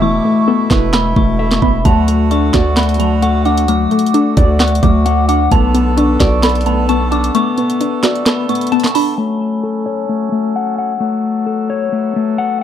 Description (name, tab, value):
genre	hip hop, trap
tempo	131 BPM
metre	4/4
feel	half-time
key	F# minor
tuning	A4 = 439 Hz
part	dark detuned synth bell	second line	0.0-9.2 s	A5 to D6	-21 LUFS	right 3 dB	chorus, phaser, ping-pong delay
part	warbly dusty pluck	accompaniment	0.0-9.2 s	E3 to F#5	-18 LUFS	equal	chorus
part	accordion	sustained chords	0.0-12.6 s	B2 to A4	-24 LUFS	right 4 dB	low-pass filter
part	mellow electric guitar	arpeggios	0.0-12.6 s	A3 to A5	-16 LUFS	left 5 dB	spring reverb, low-pass filter, ping-pong delay
part	hard-hitting 808-style bass	bass	0.0-7.3 s	E1 to D2	-16 LUFS	right 1 dB	none
part	trap drum kit	drums	0.7-9.1 s	handclaps, hi-hat, kick drum, snare drum	-16 LUFS	right 1 dB	none
room	light reverb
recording	none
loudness	-12 LUFS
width	side -10 dB against mid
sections	0.0-9.2 A section; 9.2-12.6 B section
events	break 0.0-1.9, 7.3-9.2; filter sweep 9.2-12.6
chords	0.0 Esus4; 1.9 D; 5.5 Bm7; 9.2 F#m